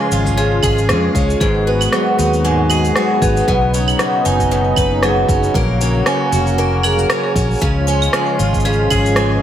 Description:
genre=folktronica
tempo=116 BPM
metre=4/4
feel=swing 56% on 16ths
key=unclear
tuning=A4 = 442 Hz
part: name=vibraphone with hard mallets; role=second line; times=0.0-9.4 s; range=G#4 to G#5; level=-21 LUFS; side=right 3 dB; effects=ping-pong delay
part: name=warm analog pad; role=sustained chords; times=0.0-9.4 s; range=C#3 to F#4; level=-22 LUFS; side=left 1 dB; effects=chorus, tremolo
part: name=picked twelve-string acoustic guitar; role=arpeggios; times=0.0-9.4 s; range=G#2 to B4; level=-18 LUFS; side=left 1 dB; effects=ping-pong delay
part: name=fingered electric bass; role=bass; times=0.1-9.4 s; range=E#1 to E#2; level=-18 LUFS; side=equal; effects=none
part: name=electronic shaker, claves and rim click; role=drums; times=0.1-9.3 s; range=none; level=-21 LUFS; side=right 1 dB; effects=none
part: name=electronic kick drum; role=drums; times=0.3-9.0 s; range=none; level=-20 LUFS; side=equal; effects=none
room=light reverb, digital ambience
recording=none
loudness=-13 LUFS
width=side -10 dB against mid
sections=0.0-9.4 A section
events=none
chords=0.0 C#; 1.4 G#m7; 3.5 Badd9; 5.5 F#; 7.6 C#

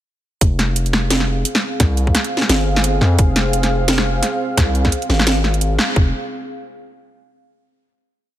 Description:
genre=half-time drum and bass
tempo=173 BPM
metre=4/4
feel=swing 57% on 16ths, half-time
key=F minor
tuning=A4 = 441 Hz
part: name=dark analog pad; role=sustained chords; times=0.4-6.1 s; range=C4 to F5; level=-24 LUFS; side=right 1 dB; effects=chorus, vintage 12-bit sampler grit, sidechain pumping
part: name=long sustained 808-style bass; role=bass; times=0.4-6.1 s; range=F1 to F2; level=-18 LUFS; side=equal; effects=none
part: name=drum and bass drum kit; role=drums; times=0.4-5.9 s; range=hi-hat, snare drum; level=-18 LUFS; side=right 1 dB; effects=overdrive
part: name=electronic kick drum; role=drums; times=0.4-6.0 s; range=none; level=-16 LUFS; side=equal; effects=overdrive
room=light reverb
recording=none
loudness=-14 LUFS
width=side -12 dB against mid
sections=0.4-6.0 drop; 6.0-7.3 final chord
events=drop 0.4-6.0; band accent 5.8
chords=0.4 Fm

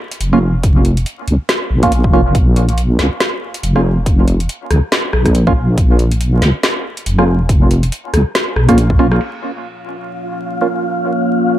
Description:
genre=deep dubstep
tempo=140 BPM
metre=4/4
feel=swing 57% on 16ths, half-time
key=Bb minor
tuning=A4 = 444 Hz
part: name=garage drum kit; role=drums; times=0.1-9.3 s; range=crash cymbal, hi-hat, rim click, snare drum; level=-19 LUFS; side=left 1 dB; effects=low-pass filter on snare, low-pass filter on hats, low-pass filter on cymbals, low-pass filter on room
part: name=deep soft wobble bass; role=bass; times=0.2-9.2 s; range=F1 to Db2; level=-13 LUFS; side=equal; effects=chorus
part: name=percussive organ stab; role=stabs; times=0.3-10.7 s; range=Bb3 to F4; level=-18 LUFS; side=right 2 dB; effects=chorus, phaser, vintage 12-bit sampler grit, dub echo
part: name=electronic kick drum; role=drums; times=0.6-9.0 s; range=none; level=-14 LUFS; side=equal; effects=none
part: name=deep dark ambient pad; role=sustained chords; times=10.1-11.6 s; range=Bb3 to Db5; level=-18 LUFS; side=equal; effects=chorus, built-in reverb
part: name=wind-like tuned noise texture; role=texture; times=9.8-11.6 s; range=F4 to F5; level=-21 LUFS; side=left 1 dB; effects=built-in reverb
room=light reverb, digital ambience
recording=echo-heavy mix, vinyl crackle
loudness=-12 LUFS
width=side -13 dB against mid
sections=0.0-9.2 A section; 9.2-11.6 B section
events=none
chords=0.0 Bbm

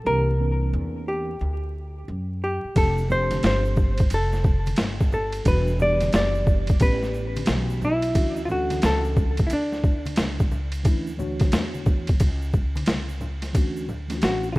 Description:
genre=hip hop, jazz-hop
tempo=89 BPM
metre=4/4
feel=swing 64% on 16ths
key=D major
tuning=A4 = 440 Hz
part: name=hollow-body jazz guitar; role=melody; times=0.0-14.6 s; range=D4 to D5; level=-26 LUFS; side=equal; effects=tape echo
part: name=mellow tine electric piano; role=accompaniment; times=0.0-14.6 s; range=E3 to C#5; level=-31 LUFS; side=equal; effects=medium stereo tremolo
part: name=upright bass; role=bass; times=0.0-14.6 s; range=E1 to F#2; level=-26 LUFS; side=equal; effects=none
part: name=boom bap sampler-style drum kit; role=drums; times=2.8-14.6 s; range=hi-hat, kick drum, ride cymbal, snare drum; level=-22 LUFS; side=equal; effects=overdrive
part: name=tube shaker and congas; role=percussion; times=2.8-14.6 s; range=none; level=-36 LUFS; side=left 1 dB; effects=none
room=digital ambience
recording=rough home demo mix, vinyl crackle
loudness=-20 LUFS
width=side -21 dB against mid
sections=0.0-13.5 A section; 13.5-14.6 B section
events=none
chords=0.1 C9; 2.8 F69; 5.5 Em9; 6.8 A9; 8.2 Dmaj9

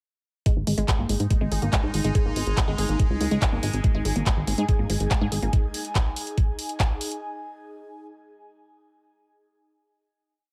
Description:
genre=psychedelic trance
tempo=142 BPM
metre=4/4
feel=straight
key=unclear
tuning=A4 = 440 Hz
part: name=evolving wavetable pad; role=sustained chords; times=1.1-5.6 s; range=G#3 to D#4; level=-36 LUFS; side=equal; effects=phaser, built-in reverb, sidechain pumping
part: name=woody wave-folded pluck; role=riff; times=0.5-5.5 s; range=G#3 to G#4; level=-33 LUFS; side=equal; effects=chorus, sidechain pumping, tape echo
part: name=drum and bass drum kit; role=drums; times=0.5-7.2 s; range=handclaps, hi-hat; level=-32 LUFS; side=equal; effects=none
part: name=electronic kick drum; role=drums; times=0.5-6.9 s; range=none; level=-25 LUFS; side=equal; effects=none
part: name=airy breathy pad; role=texture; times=0.5-7.2 s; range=D#4 to G#5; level=-39 LUFS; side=equal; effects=chorus, phaser, sidechain pumping
part: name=plucky analog bass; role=bass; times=0.6-5.5 s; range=G#1 to G#2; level=-28 LUFS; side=equal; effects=tube saturation
room=little or no reverb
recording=none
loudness=-24 LUFS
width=mono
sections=0.5-7.2 groove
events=fade-in on analog synth pad 0.5-7.2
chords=0.5 G#5

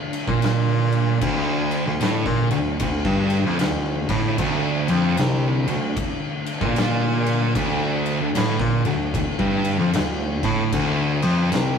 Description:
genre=stoner and doom metal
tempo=76 BPM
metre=4/4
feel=swing 63% on 8ths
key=D minor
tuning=A4 = 440 Hz
part: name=deep rumbling drone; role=sustained chords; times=0.0-11.8 s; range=D3 to D4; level=-31 LUFS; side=left 6 dB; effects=built-in reverb, phaser
part: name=oversized low-tuned drum kit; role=drums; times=0.1-11.8 s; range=crash cymbal, kick drum, snare drum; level=-26 LUFS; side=left 1 dB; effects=none
part: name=thick fuzz guitar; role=riff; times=0.3-11.8 s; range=D2 to C3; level=-27 LUFS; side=left 3 dB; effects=distortion
part: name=thick fuzz guitar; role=riff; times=0.3-11.8 s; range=D2 to C3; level=-22 LUFS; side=right 3 dB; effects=distortion
part: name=bright baritone saxophone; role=bass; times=0.3-11.8 s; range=C2 to Bb2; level=-26 LUFS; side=left 1 dB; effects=overdrive
room=wet small room reverb, RT60 0.5 s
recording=rough rehearsal-room recording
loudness=-19 LUFS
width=side -6 dB against mid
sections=0.0-11.8 A section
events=none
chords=0.0 Dm

